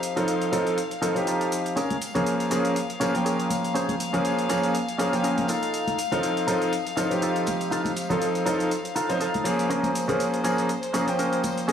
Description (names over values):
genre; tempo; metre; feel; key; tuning
nu-disco, nu disco; 121 BPM; 4/4; swing 55% on 16ths; Bb dorian; A4 = 442 Hz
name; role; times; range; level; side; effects
bright grand piano; accompaniment; 0.0-11.7 s; F3 to G5; -25 LUFS; equal; tape echo
bright chamber string section; sustained chords; 0.0-11.7 s; C5 to F5; -32 LUFS; left 5 dB; low-pass filter
electronic hi-hat and shaker; drums; 0.0-11.7 s; none; -36 LUFS; equal; none
direct-recorded clean electric guitar; riff; 0.2-11.7 s; Db4 to C5; -29 LUFS; right 1 dB; analog chorus, low-pass filter, tape echo
tambourine and congas; percussion; 1.8-11.7 s; none; -35 LUFS; left 1 dB; none
room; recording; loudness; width
moderate digital room reverb, RT60 1.0 s, small room ambience; dry, gritty hardware recording, studio reverb; -22 LUFS; side -8 dB against mid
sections
0.0-11.7 A section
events
filter sweep on string section 0.0-11.7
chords
0.0 F7; 1.8 Bbm7; 5.5 F7; 9.7 Bbm7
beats
0.28 0.78 1.27 | 1.77 2.27 2.76 3.26 | 3.75 4.25 4.75 5.24 | 5.74 6.23 6.73 7.22 | 7.72 8.22 8.71 9.21 | 9.70 10.20 10.70 11.19 | 11.69